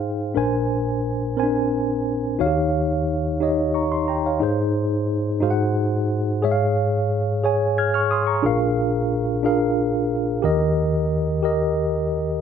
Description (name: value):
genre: gospel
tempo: 60 BPM (dotted quarters)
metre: 6/8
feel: straight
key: Ab major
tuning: A4 = 440 Hz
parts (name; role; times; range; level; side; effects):
- mellow tine electric piano; solo; 0.0-12.4 s; Bb1 to Ab6; -19 LUFS; equal; medium stereo tremolo
room: moderate large studio reverb, RT60 1.1 s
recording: none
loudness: -19 LUFS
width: side -7 dB against mid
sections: 0.0-4.4 A section; 4.4-12.4 B section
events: none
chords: 0.4 Bb9; 2.4 Eb9; 4.4 Ab; 5.4 Ab7; 6.4 Db/Ab; 8.4 Bb7; 10.4 Eb